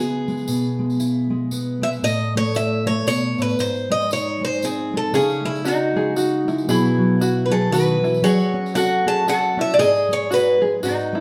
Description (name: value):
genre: acoustic folk duo or small band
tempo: 116 BPM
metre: 3/4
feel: swing 61% on 8ths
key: unclear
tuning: A4 = 440 Hz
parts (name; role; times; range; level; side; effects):
- picked steel-string acoustic guitar; melody; 0.0-10.6 s; E4 to A5; -24 LUFS; equal; none
- fingerpicked steel-string acoustic guitar; accompaniment; 0.0-11.2 s; G#2 to A4; -24 LUFS; equal; none
- tambourine; percussion; 0.3-11.1 s; none; -38 LUFS; equal; none
- lap resonator guitar; second line; 5.1-11.2 s; C#4 to A4; -28 LUFS; equal; none
- open-back banjo; arpeggios; 5.1-11.2 s; E4 to G#4; -27 LUFS; equal; none
room: wet studio reverb, RT60 0.8 s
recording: band playing live in one room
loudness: -20 LUFS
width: mono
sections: 0.0-11.2 A section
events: steel-string acoustic guitar solo 0.0-11.2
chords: 0.5 E/B; 2.0 A5; 3.6 G#; 5.1 C#madd9; 6.7 Bsus4; 8.2 F#m; 9.8 G#m